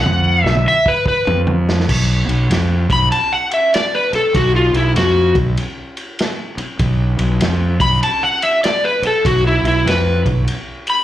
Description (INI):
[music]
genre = blues rock power trio and southern rock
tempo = 98 BPM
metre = 4/4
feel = swing 64% on 8ths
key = B minor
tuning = A4 = 440 Hz
[part]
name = overdriven slide guitar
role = melody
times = 0.0-11.0 s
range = E4 to B5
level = -14 LUFS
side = left 1 dB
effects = slapback echo
[part]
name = fuzz fingered electric bass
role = bass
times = 0.0-10.5 s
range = B1 to E#2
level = -16 LUFS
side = equal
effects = overdrive
[part]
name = vintage drum kit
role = drums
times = 0.1-11.0 s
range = crash cymbal, kick drum, ride cymbal, snare drum, toms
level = -21 LUFS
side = equal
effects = slapback echo
[sound]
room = little or no reverb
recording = live gig heard through the venue's PA, club reverb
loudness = -13 LUFS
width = side -12 dB against mid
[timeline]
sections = 0.0-1.9 A section; 1.9-11.0 A section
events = drum fill 0.0-1.9; electric slide guitar solo 0.0-11.0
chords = 0.0 B5; 1.9 N.C.